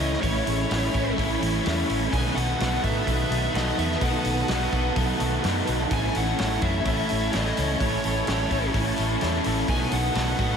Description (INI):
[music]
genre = rock, shoegaze and dream pop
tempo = 127 BPM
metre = 4/4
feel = straight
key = A lydian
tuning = A4 = 440 Hz
[part]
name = smooth overdriven lead guitar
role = melody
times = 0.0-10.6 s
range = C#5 to G#5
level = -32 LUFS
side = equal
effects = ping-pong delay
[part]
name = ensemble organ-string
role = sustained chords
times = 0.0-10.6 s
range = B4 to D#6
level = -33 LUFS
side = equal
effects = ensemble chorus
[part]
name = fingerpicked twelve-string acoustic guitar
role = arpeggios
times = 0.0-10.6 s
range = E3 to G#4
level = -35 LUFS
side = left 1 dB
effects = none
[part]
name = crunchy overdriven guitar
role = riff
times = 0.0-10.6 s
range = A2 to F#4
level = -29 LUFS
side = left 8 dB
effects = ensemble chorus
[part]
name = overdriven electric guitar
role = riff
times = 0.0-10.6 s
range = A2 to A4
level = -28 LUFS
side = right 6 dB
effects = reverse reverb
[part]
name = vintage muted fingered electric bass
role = bass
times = 0.0-10.6 s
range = A1 to A2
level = -28 LUFS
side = equal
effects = none
[part]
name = loose indie drum kit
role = drums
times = 0.0-10.5 s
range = hi-hat, kick drum, snare drum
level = -30 LUFS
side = equal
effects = none
[sound]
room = wet cathedral reverb, RT60 5.3 s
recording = dreamy mix soaked in reverb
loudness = -22 LUFS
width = side -7 dB against mid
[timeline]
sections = 0.0-10.6 A section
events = none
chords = 0.0 Amaj7; 2.1 B7; 5.9 Amaj7; 9.7 B7